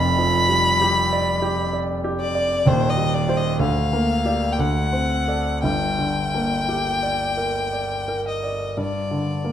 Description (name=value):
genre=classical, romantic duo for violin and grand piano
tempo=55-65 BPM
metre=3/4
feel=rubato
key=G minor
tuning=A4 = 440 Hz
part: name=rich violin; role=melody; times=0.0-9.5 s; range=C5 to B5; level=-23 LUFS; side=left 1 dB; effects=none
part: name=warm concert grand piano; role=accompaniment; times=0.0-9.5 s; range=Eb1 to D5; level=-21 LUFS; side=equal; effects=none
room=wet recital hall reverb, RT60 1.4 s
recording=none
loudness=-19 LUFS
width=side -10 dB against mid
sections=0.0-8.8 A section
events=none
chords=0.0 G7/F; 2.7 Cm/Eb; 3.6 Gm/D; 4.6 D7; 5.6 Gm; 8.8 G5